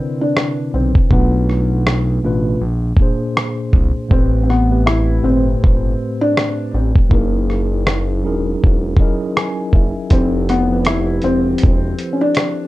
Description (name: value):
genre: lo-fi hip hop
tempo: 80 BPM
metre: 4/4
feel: swing 60% on 16ths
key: unclear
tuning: A4 = 440 Hz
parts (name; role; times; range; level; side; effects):
- felt-muted upright piano; melody; 0.0-12.7 s; A#3 to E4; -19 LUFS; left 2 dB; tape echo, plate reverb
- mellow tine electric piano; accompaniment; 0.0-12.7 s; A2 to G#5; -20 LUFS; equal; medium stereo tremolo, cassette tape
- dusty soul sampler-style drum kit; drums; 0.4-12.6 s; hi-hat, kick drum, rim click; -14 LUFS; equal; none
- smooth synth bass; bass; 0.7-11.9 s; E1 to C2; -18 LUFS; equal; none
room: light reverb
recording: dark, warm production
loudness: -13 LUFS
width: side -18 dB against mid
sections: 0.0-12.7 A section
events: break 0.0-10.1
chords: 0.0 Cmaj9; 1.1 Bm7b5; 2.6 Bb9; 4.1 Am7; 7.1 F#13; 10.1 Fmaj9